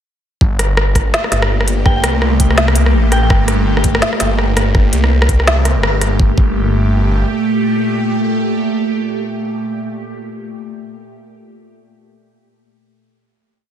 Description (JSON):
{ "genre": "half-time drum and bass", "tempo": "166 BPM", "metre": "4/4", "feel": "swing 59% on 16ths, half-time", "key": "G minor", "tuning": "A4 = 442 Hz", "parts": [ { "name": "bowed-like drone", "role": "sustained chords", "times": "1.1-9.8 s", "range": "Bb2 to G4", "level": "-19 LUFS", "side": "right 1 dB", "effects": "built-in reverb, phaser, sidechain pumping" }, { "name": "phased detuned saw bass", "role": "bass", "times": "0.4-7.2 s", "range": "F1 to C2", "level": "-14 LUFS", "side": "equal", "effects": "phaser" }, { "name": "electronic kick drum", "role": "drums", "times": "0.4-6.5 s", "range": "none", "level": "-13 LUFS", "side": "equal", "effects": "none" }, { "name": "organic electronic drum kit", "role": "drums", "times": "0.6-6.1 s", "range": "hi-hat, rim click, snare drum", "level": "-17 LUFS", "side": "equal", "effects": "none" }, { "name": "soft synth bell", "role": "melody", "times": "1.9-3.3 s", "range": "G5", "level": "-24 LUFS", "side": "equal", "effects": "chorus, phaser, ping-pong delay" } ], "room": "moderate plate reverb, RT60 1.8 s", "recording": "dreamy mix soaked in reverb", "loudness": "-12 LUFS", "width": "side -10 dB against mid", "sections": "0.4-6.2 drop; 6.2-9.1 final chord", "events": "drop 0.4-6.2; band accent 5.8", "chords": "0.4 Gmadd9" }